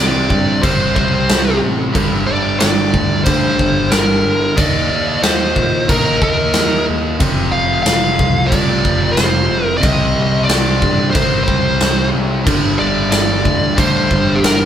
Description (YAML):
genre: hard rock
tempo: 91 BPM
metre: 4/4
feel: straight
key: G minor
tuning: A4 = 441 Hz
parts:
  - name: high-gain lead guitar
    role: melody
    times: 0.0-14.7 s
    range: G4 to F5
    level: -17 LUFS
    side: equal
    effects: distortion
  - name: overdriven electric guitar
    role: riff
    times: 0.0-14.7 s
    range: F2 to Eb4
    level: -18 LUFS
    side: equal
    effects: none
  - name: picked electric bass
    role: bass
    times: 0.0-14.7 s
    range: F1 to Bb2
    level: -20 LUFS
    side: equal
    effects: none
  - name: big rock drum kit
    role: drums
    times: 0.3-14.6 s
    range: crash cymbal, kick drum, snare drum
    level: -17 LUFS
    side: equal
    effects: none
room: moderate stone room reverb, RT60 1.2 s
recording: band playing live in one room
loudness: -12 LUFS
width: side -9 dB against mid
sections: 0.0-14.7 A section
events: none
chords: 0.0 C5; 1.9 Gm; 4.6 Eb5; 7.2 F5; 9.8 Cm; 12.5 G5